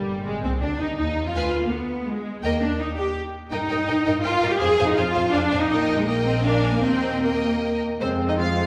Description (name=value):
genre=classical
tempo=152-167 BPM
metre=3/4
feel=rubato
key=Eb major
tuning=A4 = 440 Hz
part: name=clear symphonic violin section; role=melody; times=0.0-8.7 s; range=G3 to Ab5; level=-39 LUFS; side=equal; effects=none
part: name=rich symphonic violin section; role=second line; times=0.0-8.7 s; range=G3 to F5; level=-30 LUFS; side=equal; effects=none
part: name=rich symphonic viola section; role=accompaniment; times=0.0-8.7 s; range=G3 to Ab4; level=-29 LUFS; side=equal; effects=none
part: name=rich symphonic cello section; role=bass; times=0.0-8.7 s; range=C3 to Ab4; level=-27 LUFS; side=equal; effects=none
part: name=rich symphonic double bass section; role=bass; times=0.0-8.7 s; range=G1 to G2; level=-30 LUFS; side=equal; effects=none
part: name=clear clarinet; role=second line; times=8.0-8.7 s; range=C4 to F4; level=-29 LUFS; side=equal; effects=none
part: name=warm French horn section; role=sustained chords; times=8.0-8.7 s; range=Ab3 to C4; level=-30 LUFS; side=equal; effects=none
room=wet scoring stage reverb, RT60 1.8 s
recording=heard from further back in the room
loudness=-23 LUFS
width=mono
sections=0.0-8.0 A section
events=none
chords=0.2 Fm7; 1.3 Ddim7; 2.4 Eb; 3.5 Eb/G; 4.6 Fm; 5.7 Eb/Bb; 6.4 Bb7; 6.8 Eb; 8.0 Fm